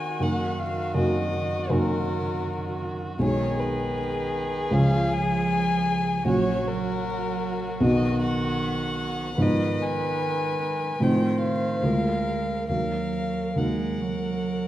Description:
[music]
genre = classical, slow romantic movement for piano quartet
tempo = 68-81 BPM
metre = 4/4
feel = rubato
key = Eb minor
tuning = A4 = 436 Hz
[part]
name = warm violin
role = melody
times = 0.0-14.7 s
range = Bb4 to Ab5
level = -30 LUFS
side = left 3 dB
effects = none
[part]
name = dark violin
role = second line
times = 0.0-14.7 s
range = Gb4 to C5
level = -32 LUFS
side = left 1 dB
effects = none
[part]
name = warm cello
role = second line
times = 0.0-14.7 s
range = D#3 to Ab3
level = -30 LUFS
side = right 5 dB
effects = none
[part]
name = dark baby grand piano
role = accompaniment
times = 0.0-14.7 s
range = Bb1 to Ab4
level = -26 LUFS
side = equal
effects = none
[sound]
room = wet recital hall reverb, RT60 1.6 s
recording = dark, warm production, vinyl crackle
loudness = -23 LUFS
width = side -13 dB against mid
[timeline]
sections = 0.0-14.7 A section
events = none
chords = 0.2 Ebm/Gb; 3.2 Abm/Cb; 4.7 Db; 6.3 Gb/Bb; 7.8 B; 9.4 Fm7b5/Ab; 11.0 F7/A; 11.8 Bb7/D; 12.7 Ebm

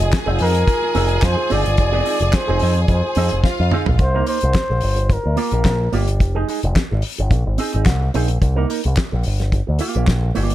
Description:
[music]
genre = disco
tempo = 108 BPM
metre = 4/4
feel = straight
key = unclear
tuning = A4 = 444 Hz
[part]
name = breathy flugelhorn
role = melody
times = 0.0-6.5 s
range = G4 to Eb5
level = -22 LUFS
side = left 1 dB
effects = none
[part]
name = clear studio string section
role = second line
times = 0.0-4.0 s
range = F4 to Ab5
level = -25 LUFS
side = equal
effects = none
[part]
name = electric guitar with an envelope filter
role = accompaniment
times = 0.0-10.5 s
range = Ab3 to Bb4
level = -26 LUFS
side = right 6 dB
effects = none
[part]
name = dark French horn section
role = sustained chords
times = 0.0-4.0 s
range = Eb3 to F4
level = -29 LUFS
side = right 5 dB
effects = none
[part]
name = picked electric bass with an envelope filter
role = bass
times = 0.0-10.5 s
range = F1 to F2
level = -18 LUFS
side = equal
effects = none
[part]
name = damped 70s drum kit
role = drums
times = 0.0-10.5 s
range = handclaps, hi-hat, kick drum, snare drum, toms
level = -20 LUFS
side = equal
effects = none
[sound]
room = studio reverb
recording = dark, warm production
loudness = -16 LUFS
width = side -14 dB against mid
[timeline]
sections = 0.0-4.0 A section; 4.0-10.5 B section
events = drum fill 3.4-4.0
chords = 0.0 Fm7; 4.0 Cm7; 4.8 Gm7; 6.2 Fm9; 7.3 Bb9sus4; 8.4 Cm7; 9.2 Gm7

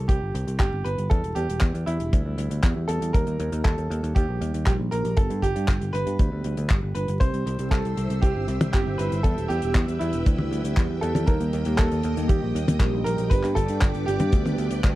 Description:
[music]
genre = italo disco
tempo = 118 BPM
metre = 4/4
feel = straight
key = G major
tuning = A4 = 440 Hz
[part]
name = clear baby grand piano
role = melody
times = 0.0-14.8 s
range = E4 to C5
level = -30 LUFS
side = right 1 dB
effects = tape echo
[part]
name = mellow synth brass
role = stabs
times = 0.0-14.9 s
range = G3 to G4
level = -32 LUFS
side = right 2 dB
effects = chorus
[part]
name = picked electric bass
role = bass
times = 0.0-14.9 s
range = E1 to G2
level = -27 LUFS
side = equal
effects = none
[part]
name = damped 70s drum kit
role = drums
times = 0.1-14.9 s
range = handclaps, hi-hat, toms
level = -30 LUFS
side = left 1 dB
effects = studio reverb
[part]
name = kick drum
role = drums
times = 0.1-14.9 s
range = none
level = -21 LUFS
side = equal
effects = studio reverb
[part]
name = string machine, full ensemble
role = sustained chords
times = 7.2-15.0 s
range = Bb3 to E6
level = -34 LUFS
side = left 1 dB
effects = ensemble chorus
[sound]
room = little or no reverb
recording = dry, close 1970s-style studio recording, vinyl crackle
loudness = -21 LUFS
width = side -16 dB against mid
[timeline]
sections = 0.0-15.0 A section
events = filter sweep on analog polysynth 0.0-15.0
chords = 0.0 C; 1.1 Em; 3.1 Eb; 5.2 G; 7.2 C; 9.2 Em; 11.3 Eb; 13.3 G

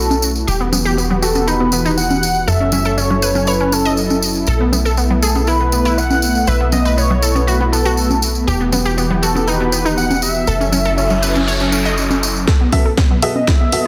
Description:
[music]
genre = progressive house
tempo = 120 BPM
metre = 4/4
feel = straight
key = B mixolydian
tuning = A4 = 441 Hz
[part]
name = unison lead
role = melody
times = 0.0-13.9 s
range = A4 to F#5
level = -23 LUFS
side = equal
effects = lush chorus, sidechain pumping, delay
[part]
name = lush unison pad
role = sustained chords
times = 0.0-13.9 s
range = B2 to A4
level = -24 LUFS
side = equal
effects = chorus, sidechain pumping
[part]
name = unison pluck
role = arpeggios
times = 0.0-13.8 s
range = B3 to D#5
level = -23 LUFS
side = equal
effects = sidechain pumping, delay
[part]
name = plucky analog bass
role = bass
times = 0.0-12.5 s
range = E1 to B1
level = -22 LUFS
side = equal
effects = sidechain pumping
[part]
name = congas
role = percussion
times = 0.1-13.5 s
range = none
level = -24 LUFS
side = equal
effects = sidechain pumping on perc
[part]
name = tambourine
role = percussion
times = 0.1-12.5 s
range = none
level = -25 LUFS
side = equal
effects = none
[part]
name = noise sweep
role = sound effects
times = 11.0-12.5 s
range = none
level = -26 LUFS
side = equal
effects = none
[part]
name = electronic kick drum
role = drums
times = 12.5-13.6 s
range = none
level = -16 LUFS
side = equal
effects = overdrive
[part]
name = house drum kit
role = drums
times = 12.5-13.8 s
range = hi-hat, snare drum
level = -24 LUFS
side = equal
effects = overdrive, high-pass filter on snare, high-pass filter on hats, high-pass filter on room
[part]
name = warm baby grand piano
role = stabs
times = 12.7-13.8 s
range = B3 to E5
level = -22 LUFS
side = equal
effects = sidechain pumping, low-pass filter, delay
[part]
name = airy dreamy lead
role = second line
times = 13.2-13.9 s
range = D#5 to E5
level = -28 LUFS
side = equal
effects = none
[sound]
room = moderate lush hall reverb, RT60 1.5 s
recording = dense, heavily limited modern master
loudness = -15 LUFS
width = mono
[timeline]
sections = 0.0-12.5 A section; 12.5-13.9 B section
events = noise sweep 11.0-12.5; build-up 12.5-13.9; drum fill 12.5-13.9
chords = 0.5 Emadd9; 2.5 F#m7; 4.5 B7sus4; 8.5 Emadd9; 10.5 F#m7; 12.5 B7sus4

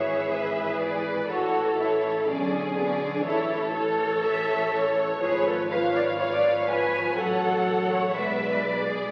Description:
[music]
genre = quick classical-period movement for string orchestra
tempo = 123 BPM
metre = 4/4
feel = straight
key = A major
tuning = A4 = 440 Hz
[part]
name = warm symphonic violin section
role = melody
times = 0.0-9.1 s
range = C#5 to E5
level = -35 LUFS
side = equal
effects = none
[part]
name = warm symphonic violin section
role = second line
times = 0.0-9.1 s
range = G#4 to G#5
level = -31 LUFS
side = equal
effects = none
[part]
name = dark symphonic viola section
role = accompaniment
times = 0.0-9.1 s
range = D3 to B4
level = -31 LUFS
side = equal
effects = none
[part]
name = clear symphonic double bass section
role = bass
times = 0.0-9.1 s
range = G#1 to B1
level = -40 LUFS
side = equal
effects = none
[part]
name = rich symphonic cello section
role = bass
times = 0.0-9.1 s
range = B3 to D5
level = -30 LUFS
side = equal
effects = none
[sound]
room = wet recital hall reverb, RT60 1.4 s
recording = very old 78 rpm record, vinyl crackle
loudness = -25 LUFS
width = mono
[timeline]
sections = 0.0-9.1 A section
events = none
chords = 0.0 E/G#; 1.3 A; 2.3 G#dim/B; 3.3 A; 5.2 C#7/G#; 7.2 F#m/A; 8.2 G#dim/B

